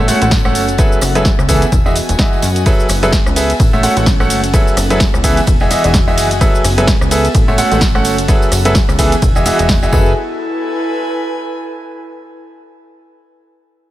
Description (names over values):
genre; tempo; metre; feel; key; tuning
piano house; 128 BPM; 4/4; swing 57% on 16ths; F# dorian; A4 = 441 Hz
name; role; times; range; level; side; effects
clear baby grand piano; riff; 0.0-10.1 s; E3 to F#5; -15 LUFS; right 1 dB; sidechain pumping, dub echo
plucky analog bass; bass; 0.0-10.1 s; E1 to F#2; -17 LUFS; equal; sidechain pumping
airy breathy pad; texture; 0.0-12.0 s; B3 to G#5; -22 LUFS; equal; chorus, sidechain pumping
punchy analog drum machine; drums; 0.1-9.9 s; cabasa, hi-hat, ride cymbal, rim click, snare drum; -19 LUFS; equal; none
tambourine; percussion; 0.1-10.1 s; none; -29 LUFS; right 6 dB; none
electronic kick drum; drums; 0.3-10.0 s; none; -13 LUFS; equal; none
room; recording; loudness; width
little or no reverb; none; -10 LUFS; side -14 dB against mid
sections
0.0-10.2 A section; 10.2-12.0 B section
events
drop 0.0-10.2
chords
0.0 F#m11; 1.7 Emaj9; 2.7 F#m11; 5.5 Emaj9; 6.4 F#m11; 9.2 Emaj9; 9.9 F#m11; 10.2 Eadd11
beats
0.32 | 0.79 1.25 1.72 2.19 | 2.66 3.13 3.60 4.07 | 4.54 5.00 5.47 5.94 | 6.41 6.88 7.35 7.82 | 8.29 8.75 9.22 9.69 | 10.16 10.63 11.10 11.57